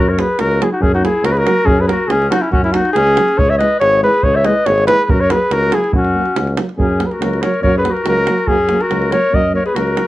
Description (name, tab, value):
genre	balkan folk, Balkan brass band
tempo	141 BPM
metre	2/4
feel	straight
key	F# mixolydian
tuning	A4 = 440 Hz
part	warm flugelhorn	melody	0.0-10.1 s	E4 to E5	-15 LUFS	equal	none
part	warm clarinet	second line	0.0-10.1 s	C#4 to C#5	-20 LUFS	left 4 dB	none
part	warm tuba	bass	0.0-10.0 s	G#1 to F#2	-19 LUFS	equal	none
part	dark French horn	accompaniment	0.2-10.0 s	G#3 to A#3	-26 LUFS	left 3 dB	none
part	mellow euphonium	accompaniment	0.2-10.1 s	E3 to F#3	-23 LUFS	right 4 dB	none
part	davul	percussion	0.2-10.1 s	none	-20 LUFS	right 2 dB	none
room	moderate studio reverb, RT60 0.5 s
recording	worn, warbling old tape, cassette tape, warbly pitch drift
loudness	-12 LUFS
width	side -16 dB against mid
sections	0.0-6.8 A section; 6.8-10.1 B section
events	none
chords	0.0 F#; 3.4 C#m; 5.1 F#